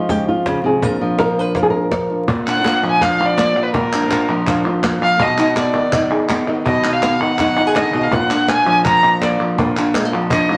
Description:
flamenco; 164 BPM; 4/4; straight; Bb phrygian dominant; A4 = 444 Hz
flamenco guitar; melody; 0.0-10.6 s; Bb2 to Cb5; -20 LUFS; equal
flamenco guitar; stabs; 0.0-10.6 s; Bb2 to F#4; -27 LUFS; equal
cajon; percussion; 0.1-10.5 s; -27 LUFS; equal
palmas hand claps; percussion; 2.3-10.6 s; -26 LUFS; equal
warm violin; second line; 2.5-10.6 s; Bb4 to Bb5; -19 LUFS; equal
wet studio reverb, RT60 0.9 s; vinyl crackle; -16 LUFS; mono
0.0-2.3 A section; 2.3-10.6 B section
violin solo 2.3-10.6
0.0 Db; 0.8 Bb; 5.2 B; 8.1 Bb

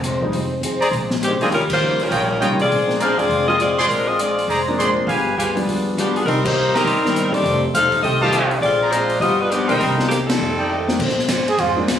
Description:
jazz, big band swing; 203 BPM; 4/4; swing 61% on 8ths; Bb mixolydian; A4 = 440 Hz
picked steel-string acoustic guitar; accompaniment; 0.0-12.0 s; F2 to Ab4; -25 LUFS; left 3 dB
upright bass; bass; 0.0-12.0 s; E1 to Bb2; -26 LUFS; right 1 dB
open jazz drum kit; drums; 0.0-12.0 s; crash cymbal, hi-hat, kick drum, ride cymbal, rim click, snare drum; -26 LUFS; left 1 dB
clear concert grand piano; accompaniment; 0.2-11.9 s; Eb3 to F4; -24 LUFS; right 1 dB
clear trumpet section; stabs; 0.8-11.0 s; Eb4 to C6; -21 LUFS; right 1 dB
warm saxophone section; melody; 1.2-10.8 s; Eb3 to F5; -18 LUFS; left 2 dB
breathy trumpet; melody; 11.5-11.8 s; F4 to Ab4; -19 LUFS; right 4 dB
moderate large studio reverb, RT60 0.8 s; recorded on a phone in the room, studio reverb, compression; -16 LUFS; side -9 dB against mid
0.0-11.0 A section
band accent 1.7, 6.4, 10.3; drum fill 10.7
0.3 Fm7; 0.9 Bb9; 1.5 Eb9; 2.7 Bb9; 5.1 G7b9; 6.3 Cm7; 7.4 F9; 8.6 Bb9; 9.2 G7b13; 9.8 Cm7; 10.4 F13; 11.0 Bb9

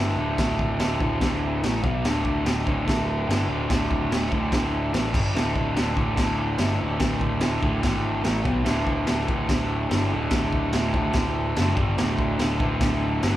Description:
garage rock duo or trio; 145 BPM; 4/4; straight; A4 = 440 Hz
raw garage guitar; riff; 0.0-13.4 s; D2 to B3; -25 LUFS; equal; overdrive
picked electric bass; bass; 0.0-13.4 s; D1 to B1; -28 LUFS; equal
raw garage drum kit; drums; 0.4-13.3 s; crash cymbal, kick drum, snare drum; -26 LUFS; equal
light reverb; band playing live in one room; -21 LUFS; side -13 dB against mid
0.0-13.4 A section
0.0 D5; 1.6 A5; 1.8 B5; 2.0 D5; 5.2 G5; 5.4 D5; 8.3 A5; 8.5 B5; 8.7 D5; 11.8 G5; 12.0 D5

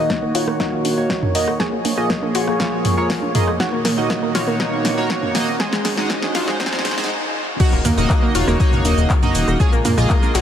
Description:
progressive house; 120 BPM; 4/4; straight; Eb dorian; A4 = 440 Hz
filtered supersaw swell; sustained chords; 0.0-10.4 s; Bb2 to Db5; -27 LUFS; left 1 dB; sidechain pumping
chorused polysynth; stabs; 0.0-10.4 s; Ab3 to Eb5; -21 LUFS; right 1 dB; sidechain pumping, dub echo
riser and swell; sound effects; 1.4-7.6 s; -34 LUFS; equal
analog pluck; arpeggios; 0.1-10.4 s; Ab3 to Ab4; -24 LUFS; equal; chorus, sidechain pumping, dub echo
electronic kick drum; drums; 0.1-10.2 s; -19 LUFS; left 1 dB; overdrive, high-pass filter on kick, high-pass filter on room
house drum kit; drums; 0.1-10.4 s; crash cymbal, handclaps, hi-hat, rim click, shaker, snare drum; -24 LUFS; left 1 dB
electronic congas and toms; percussion; 0.8-10.3 s; -23 LUFS; right 1 dB; sidechain pumping on perc, sidechain pumping on toms
fat analog bass; bass; 7.7-10.4 s; Eb1 to Bb2; -19 LUFS; left 1 dB; sidechain pumping
light reverb, digital ambience; dense, heavily limited modern master, high-pass filter; -16 LUFS; side -9 dB against mid
0.0-7.6 A section; 7.6-10.4 B section
build-up 0.0-7.6; drum fill 0.0-7.1; filter sweep on synth pluck 0.0-7.6; filter sweep on analog polysynth 0.0-7.6; filter sweep 0.0-7.6; swell 6.6-7.6; stop 7.1-7.6; drop 7.6-10.4
0.0 Ebm7; 1.6 Bbm7; 3.6 Ebm7/Bb; 5.6 Ab7; 7.6 Ebm7; 9.6 Bbm7

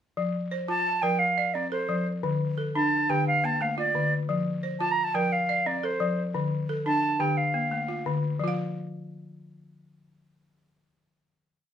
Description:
west african traditional, West African string and xylophone music; 117 BPM (dotted quarters); 12/8; straight; F major; A4 = 445 Hz
balafon; arpeggios; 0.2-11.7 s; D3 to F5; -28 LUFS; left 1 dB
reedy silver concert flute; melody; 0.7-8.1 s; C5 to Bb5; -26 LUFS; right 2 dB
wet studio reverb, RT60 0.6 s; band playing live in one room; -24 LUFS; side -9 dB against mid
0.2-8.4 A section; 8.4-11.7 final note
0.2 F; 2.2 Dm; 4.3 F; 6.3 Dm; 8.4 N.C.

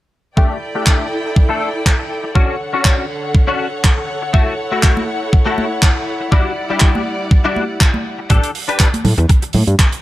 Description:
nu-disco, nu disco; 121 BPM; 4/4; swing 53% on 16ths; A mixolydian; A4 = 441 Hz
rich studio string section; sustained chords; 0.4-8.3 s; D3 to G5; -23 LUFS; equal; sidechain pumping
direct-recorded clean electric guitar; riff; 0.4-9.5 s; G3 to B4; -20 LUFS; left 3 dB; ensemble chorus, low-pass filter, analog delay
electronic kick drum; drums; 0.4-9.9 s; -12 LUFS; equal; overdrive
damped 70s drum kit; drums; 0.9-10.0 s; handclaps, hi-hat; -19 LUFS; equal
congas; percussion; 5.0-9.6 s; -21 LUFS; right 1 dB
fat analog bass; bass; 8.3-9.8 s; A1 to A2; -14 LUFS; equal; sidechain pumping
little or no reverb; -13 LUFS; side -16 dB against mid
0.4-8.3 A section; 8.3-10.0 B section
0.4 A7sus4; 2.4 Dmaj7; 4.3 F#m7; 6.3 Em9; 8.3 A7sus4

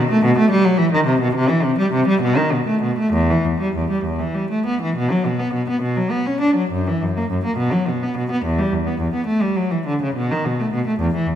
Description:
classical, baroque-style suite movement for unaccompanied cello; 62-74 BPM (dotted quarters); 6/8; rubato; E minor, B minor from 5.0 s; A4 = 438 Hz
rich cello; solo; 0.0-11.4 s; E2 to D4; -17 LUFS; equal
moderate scoring stage reverb, RT60 1.8 s; -17 LUFS; side -10 dB against mid
0.0-5.0 A section; 5.0-11.4 A section

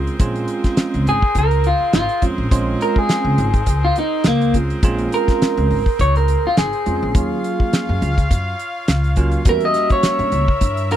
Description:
straight-eighth soul blues; 104 BPM; 4/4; swing 55% on 16ths; Bb minor; A4 = 440 Hz
bell-like tine electric piano; accompaniment; 0.0-10.4 s; Gb3 to Gb4; -22 LUFS; right 4 dB; phaser
brilliant horn section; sustained chords; 0.0-11.0 s; C4 to F5; -29 LUFS; left 1 dB
upright bass; bass; 0.0-11.0 s; Ab1 to G2; -20 LUFS; equal
damped 70s drum kit; drums; 0.1-11.0 s; hi-hat, kick drum, snare drum; -17 LUFS; equal
electric guitar through a small old amp; melody; 1.1-11.0 s; Bb3 to Eb5; -19 LUFS; equal
little or no reverb; dry, close 1970s-style studio recording; -15 LUFS; side -11 dB against mid
0.0-11.0 A section
clean electric guitar solo 0.0-11.0
0.0 Bbm9; 7.1 Ebm9 (rootless); 9.5 Edim7

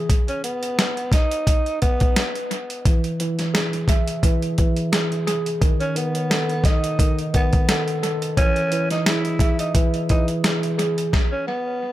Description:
hip hop, boom-bap hip-hop; 87 BPM; 4/4; swing 54% on 16ths; E major; A4 = 442 Hz
mellow tine electric piano; accompaniment; 0.0-11.2 s; D#3 to E5; -23 LUFS; right 1 dB; medium stereo tremolo, cassette tape, high-pass filter, low-pass filter, analog delay
dusty soul sampler-style drum kit; drums; 0.1-11.3 s; hi-hat, kick drum, snare drum; -20 LUFS; equal; overdrive, analog delay
growling tenor saxophone; melody; 0.3-11.9 s; B3 to E4; -25 LUFS; right 1 dB; high-pass filter, low-pass filter, analog delay
little or no reverb; echo-heavy mix; -18 LUFS; side -14 dB against mid
0.0-11.9 A section
0.1 N.C.; 2.9 E; 5.6 B7/D#; 8.4 E; 11.1 N.C.

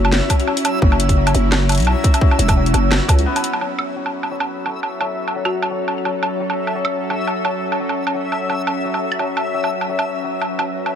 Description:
half-time drum and bass; 172 BPM; 4/4; swing 55% on 16ths, half-time; F# minor; A4 = 440 Hz
folk marimba with hard mallets; melody; 0.0-0.4, 5.5-5.9 s; F#4; -30 LUFS; left 3 dB; ping-pong delay
bowed-like drone; sustained chords; 0.0-11.0 s; F#3 to B4; -25 LUFS; right 1 dB; built-in reverb, sidechain pumping
santur; arpeggios; 0.0-10.9 s; F#3 to B3; -25 LUFS; left 6 dB; low-pass filter, ping-pong delay
growling 808-style bass; bass; 0.0-3.2 s; E1 to C#2; -16 LUFS; equal
drum and bass drum kit; drums; 0.0-10.9 s; hi-hat, snare drum, woodblock; -22 LUFS; right 1 dB; low-pass filter on perc, low-pass filter on hats, low-pass filter on snare, low-pass filter on room
backwards swelling texture; texture; 0.0-11.0 s; E5; -27 LUFS; left 2 dB; built-in reverb
electronic kick drum; drums; 0.3-3.2 s; -15 LUFS; equal
light reverb; -16 LUFS; side -8 dB against mid
0.0-3.6 A section; 3.6-11.0 B section
drop 0.0-3.6
0.0 F#5; 3.6 F#m

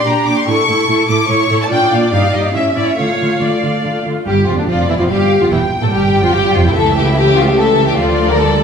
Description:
quick classical-period movement for string orchestra; 145 BPM; 3/4; straight; D minor; A4 = 441 Hz
clear symphonic violin section; melody; 0.0-8.6 s; C#5 to D6; -18 LUFS; left 2 dB
warm symphonic violin section; second line; 0.0-8.6 s; D4 to F5; -16 LUFS; left 3 dB
warm symphonic viola section; accompaniment; 0.0-8.6 s; D3 to A4; -18 LUFS; right 1 dB
warm symphonic cello section; bass; 0.1-8.6 s; D2 to D3; -19 LUFS; right 3 dB
warm symphonic double bass section; bass; 4.3-8.6 s; E1 to D2; -19 LUFS; right 3 dB
wet recital hall reverb, RT60 1.6 s; recorded in a church or concert hall; -11 LUFS; side -6 dB against mid
0.0-4.3 A section; 4.3-8.6 B section
0.5 A; 1.7 Bb; 2.1 Eb/G; 2.5 A; 3.0 Dm; 5.5 Fmaj9/E; 6.8 A/C#; 8.0 Dm

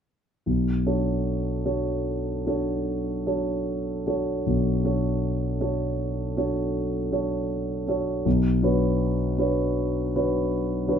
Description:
classical, impressionist solo piano; 74-81 BPM; 5/4; rubato; B minor; A4 = 441 Hz
warm concert grand piano; solo; 0.5-11.0 s; B1 to C#5; -23 LUFS; equal
light reverb; minimal, uncompressed stereo recording; -23 LUFS; side -8 dB against mid
0.5-11.0 A section
0.5 Bm9; 8.3 Bmadd9

